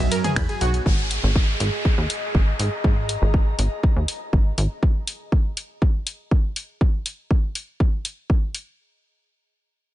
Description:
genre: melodic techno.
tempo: 121 BPM.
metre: 4/4.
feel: straight.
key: G# minor.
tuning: A4 = 442 Hz.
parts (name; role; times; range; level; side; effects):
mellow synth brass; melody; 0.0-0.8 s; F#2 to F#3; -30 LUFS; right 6 dB; chorus, dub echo.
dark detuned synth bell; second line; 0.0-0.8 s; F#4; -37 LUFS; left 6 dB; none.
lush unison pad; sustained chords; 0.0-0.8 s; B3 to G#5; -41 LUFS; right 1 dB; none.
analog pluck; arpeggios; 0.0-0.7 s; F#4 to B5; -29 LUFS; right 2 dB; chorus, cassette tape, sidechain pumping, ping-pong delay.
plucky analog bass; bass; 0.0-4.7 s; G#1 to E2; -22 LUFS; equal; sidechain pumping.
bowed-like drone; drone; 0.1-0.9 s; G#2 to G#3; -42 LUFS; equal; none.
punchy analog drum machine; drums; 0.0-8.6 s; finger snaps, hi-hat, ride cymbal, toms; -28 LUFS; left 2 dB; sidechain pumping on hats, sidechain pumping on cymbals, sidechain pumping on toms.
electronic kick drum; drums; 0.4-8.4 s; none; -19 LUFS; equal; none.
downlifter; sound effects; 0.9-4.8 s; none; -30 LUFS; equal; none.
ethereal airy pad; texture; 1.2-4.8 s; G#4 to A#5; -32 LUFS; equal; ensemble chorus, built-in reverb, sidechain pumping.
room: digital ambience.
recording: nothing above 10.7 kHz.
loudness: -20 LUFS.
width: side -14 dB against mid.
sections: 0.9-8.8 A section.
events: fade-out on ambient pad 0.9-4.8.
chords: 0.0 E (rootless); 0.9 G#5.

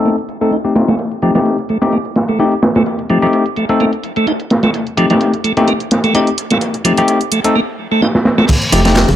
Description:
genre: breakbeat, breaks.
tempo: 128 BPM.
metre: 4/4.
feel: swing 54% on 16ths.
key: unclear.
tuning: A4 = 440 Hz.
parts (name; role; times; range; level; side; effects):
bell-like tine electric piano; stabs; 0.0-9.1 s; A3 to A4; -15 LUFS; left 2 dB; tape echo.
tonewheel organ; riff; 0.1-8.9 s; F3 to Eb4; -18 LUFS; right 2 dB; stopped rotary speaker, tape echo.
crunchy breakbeat drum kit; drums; 0.1-9.2 s; crash cymbal, hi-hat, kick drum, snare drum; -16 LUFS; right 1 dB; low-pass filter on kick, low-pass filter on hats, low-pass filter on cymbals, low-pass filter on snare, low-pass filter on room.
garage drum kit; drums; 0.1-9.2 s; handclaps, hi-hat; -22 LUFS; right 2 dB; none.
congas and bongos; percussion; 8.5-9.2 s; none; -19 LUFS; left 4 dB; none.
fat analog bass; bass; 8.7-9.2 s; F1; -13 LUFS; right 1 dB; none.
room: light reverb, studio ambience.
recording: low-pass filter.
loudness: -11 LUFS.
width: side -11 dB against mid.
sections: 0.0-8.5 A section.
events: filter sweep on tonewheel organ 0.0-8.5; filter sweep on tine electric piano 0.0-8.5; filter sweep 0.0-8.5; drum fill 8.0-8.5.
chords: 0.0 F7.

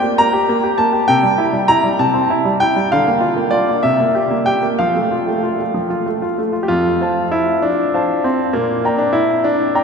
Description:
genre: classical-period piano sonatina.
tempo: 65 BPM (dotted quarters).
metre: 6/8.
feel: straight.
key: F major.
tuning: A4 = 440 Hz.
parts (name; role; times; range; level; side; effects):
bright grand piano; solo; 0.0-9.8 s; F2 to Bb5; -14 LUFS; equal; none.
room: wet cathedral reverb, RT60 6.1 s.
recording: nothing above 10.4 kHz.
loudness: -14 LUFS.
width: side -6 dB against mid.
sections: 0.0-6.7 A section; 6.7-9.8 B section.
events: none.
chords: 0.0 Gm/Bb; 1.1 C; 2.9 Bb/D; 3.8 C7; 4.8 F; 8.6 Gm/Bb.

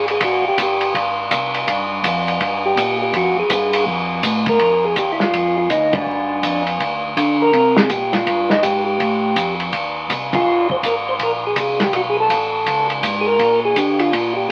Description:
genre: soul jazz organ trio.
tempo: 164 BPM.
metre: 4/4.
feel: swing 64% on 8ths.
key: unclear.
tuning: A4 = 439 Hz.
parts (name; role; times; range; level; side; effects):
percussive tonewheel organ; melody; 0.0-14.5 s; D4 to C5; -20 LUFS; equal; slow rotary speaker.
mellow tonewheel organ; bass; 0.0-14.5 s; G1 to D3; -28 LUFS; equal; overdrive, chorus vibrato, slow rotary speaker.
warm soul drum kit; drums; 0.1-14.2 s; hi-hat, kick drum, ride cymbal, snare drum; -21 LUFS; equal; none.
room: moderate studio reverb, RT60 0.7 s.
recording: very old 78 rpm record, vinyl crackle, faint mains hum.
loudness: -18 LUFS.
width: mono.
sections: 0.0-4.6 A section; 4.6-14.5 B section.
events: tonewheel organ solo 0.0-4.6; band accent 5.9, 10.3.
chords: 0.2 Gsus2; 0.9 Ab; 1.7 Gm7; 3.1 Fmadd9; 3.9 F; 4.6 Dm; 6.1 G5; 7.5 C5; 9.0 Fadd9; 9.7 Cmadd11; 10.5 Gm; 11.9 Bsus2; 13.4 Bb.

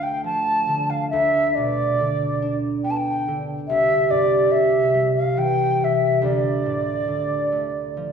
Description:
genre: celtic folk.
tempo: 70 BPM.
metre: 3/4.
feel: rubato.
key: D dorian.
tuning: A4 = 436 Hz.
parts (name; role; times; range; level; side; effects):
baroque flute; melody; 0.0-8.1 s; D5 to A5; -21 LUFS; equal; none.
concert harp; accompaniment; 0.0-8.1 s; C2 to D4; -23 LUFS; equal; none.
room: wet recital hall reverb, RT60 1.6 s.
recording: recorded in a church or concert hall.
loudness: -18 LUFS.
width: side -6 dB against mid.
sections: 0.0-8.1 A section.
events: none.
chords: 0.0 Dm; 1.1 Gadd9/D; 3.7 C; 6.2 D5.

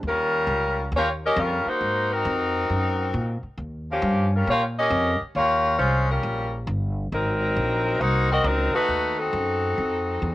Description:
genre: jazz, big band swing.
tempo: 135 BPM.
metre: 4/4.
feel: swing 68% on 8ths.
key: unclear.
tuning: A4 = 440 Hz.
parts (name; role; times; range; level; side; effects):
upright bass; bass; 0.0-10.3 s; G1 to Bb2; -26 LUFS; equal; none.
clear saxophone section; melody; 0.1-10.3 s; F3 to Eb5; -22 LUFS; left 1 dB; cassette tape.
room: light reverb.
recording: home recording on cassette.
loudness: -21 LUFS.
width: side -16 dB against mid.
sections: 0.0-10.3 A section.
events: none.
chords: 0.0 Eb9; 1.8 Ab9; 3.6 Eb9; 7.1 Ab9; 8.9 Adim7.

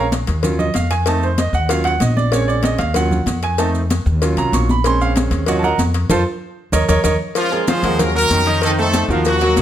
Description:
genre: latin, salsa.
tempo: 190 BPM.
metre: 4/4.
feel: straight.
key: unclear.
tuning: A4 = 440 Hz.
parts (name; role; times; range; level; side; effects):
bright grand piano; accompaniment; 0.0-9.6 s; Eb3 to Db6; -19 LUFS; right 3 dB; none.
upright bass; bass; 0.0-9.6 s; Bb1 to F2; -19 LUFS; equal; none.
congas; percussion; 0.1-9.6 s; none; -23 LUFS; equal; none.
cowbell; percussion; 0.1-9.6 s; none; -25 LUFS; left 6 dB; none.
maracas; percussion; 0.1-9.6 s; none; -31 LUFS; right 7 dB; none.
brilliant horn section; melody; 7.4-9.6 s; Ab3 to C5; -18 LUFS; left 2 dB; none.
brilliant trombone section; second line; 7.4-9.6 s; Eb3 to Ab3; -24 LUFS; right 1 dB; none.
room: moderate large studio reverb, RT60 1.0 s.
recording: none.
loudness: -14 LUFS.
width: side -11 dB against mid.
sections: 0.0-7.4 A section; 7.4-9.6 B section.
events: grand piano solo 0.0-7.4; drum fill 6.1-7.4; band accent 6.1-7.4.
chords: 0.4 Ebm7; 1.1 F7; 1.7 Ebm7; 2.3 Bbm9; 3.0 Ebm7; 3.6 F7; 4.2 Ebm7; 4.8 Bbm9; 5.5 Ebm7; 6.1 F; 6.7 Eb5; 7.4 Ebm7; 8.6 F7.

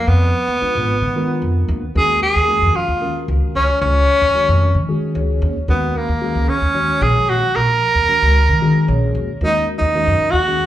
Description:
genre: electric jazz fusion.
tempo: 225 BPM (eighths).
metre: 7/8.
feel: straight.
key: Eb minor.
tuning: A4 = 442 Hz.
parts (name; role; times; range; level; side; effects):
breathy tenor saxophone; melody; 0.0-10.7 s; Bb3 to Bb4; -17 LUFS; right 1 dB; slapback echo.
upright bass; bass; 0.1-10.6 s; Ab1 to Eb3; -18 LUFS; equal; none.
mellow tine electric piano; accompaniment; 0.6-10.7 s; Eb3 to Db5; -24 LUFS; left 1 dB; slow stereo tremolo, analog chorus, slapback echo.
room: light reverb.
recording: live gig heard through the venue's PA, club ambience.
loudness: -14 LUFS.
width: side -12 dB against mid.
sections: 0.0-10.7 A section.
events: tine electric piano fill 4.9-5.7, 8.6-9.4.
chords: 0.0 Bb7b9; 1.9 Gbadd9; 5.7 Ebm7; 9.4 Ab9sus4/Eb.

